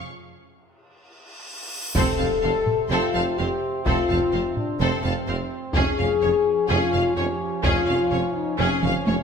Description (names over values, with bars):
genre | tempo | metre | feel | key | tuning
cinematic, epic orchestral film score | 126 BPM | 4/4 | straight | unclear | A4 = 440 Hz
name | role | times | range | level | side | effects
rich studio violin section | melody | 0.0-9.1 s | Ab4 to A5 | -31 LUFS | left 2 dB | none
bright trombone section | sustained chords | 0.0-9.2 s | C3 to Db4 | -31 LUFS | right 4 dB | none
cymbal swell and impact | sound effects | 1.3-3.9 s | none | -32 LUFS | equal | none
clear symphonic violin section | second line | 2.0-9.2 s | Ab4 to F5 | -30 LUFS | equal | none
rich symphonic viola section | accompaniment | 2.0-9.1 s | C4 to Db4 | -31 LUFS | right 2 dB | none
mellow French horn section | sustained chords | 2.0-9.2 s | C4 to A4 | -24 LUFS | left 5 dB | none
clear studio double bass section | bass | 2.0-9.2 s | F1 | -30 LUFS | right 4 dB | none
clear symphonic cello section | bass | 2.0-9.1 s | F2 | -31 LUFS | right 2 dB | none
warm tuba | bass | 2.0-9.2 s | F1 | -32 LUFS | right 4 dB | none
taiko ensemble | drums | 2.0-9.2 s | none | -27 LUFS | equal | none
room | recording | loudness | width
wet scoring stage reverb, RT60 1.7 s | none | -20 LUFS | side -6 dB against mid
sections
0.0-2.0 A section; 2.0-9.2 B section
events
break 0.1-2.0; cymbal swell 1.3-2.0; impact 2.0-3.9; drum fill 8.8-9.2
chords
0.0 N.C.; 2.0 F; 5.7 Db/F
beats
| 0.05 0.53 1.00 1.48 | 1.95 2.43 2.90 3.38 | 3.85 4.33 4.80 5.27 | 5.75 6.22 6.70 7.17 | 7.64 8.12 8.59 9.07